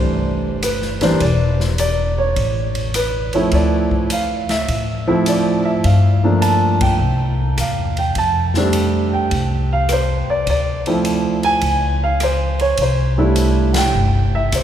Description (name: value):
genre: jazz piano trio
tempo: 104 BPM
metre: 4/4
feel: swing 67% on 8ths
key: C major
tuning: A4 = 437 Hz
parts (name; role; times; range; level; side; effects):
- warm concert grand piano; melody; 0.0-14.6 s; E3 to A5; -17 LUFS; right 2 dB; none
- upright bass; bass; 0.0-14.6 s; Fb1 to A2; -19 LUFS; left 1 dB; none
- open jazz drum kit; drums; 0.6-14.6 s; hi-hat, kick drum, ride cymbal, rim click, snare drum; -26 LUFS; left 1 dB; none
room: wet cathedral reverb, RT60 5.4 s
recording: recorded in a church or concert hall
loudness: -15 LUFS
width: side -10 dB against mid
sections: 0.0-14.6 A section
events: band accent 6.7, 13.7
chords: 0.0 C6; 1.2 N.C.; 2.4 A; 3.5 Dm7; 5.8 Gm7; 7.0 C; 8.2 F6; 10.5 Dm7; 11.6 Dbmaj7(no3); 12.8 C6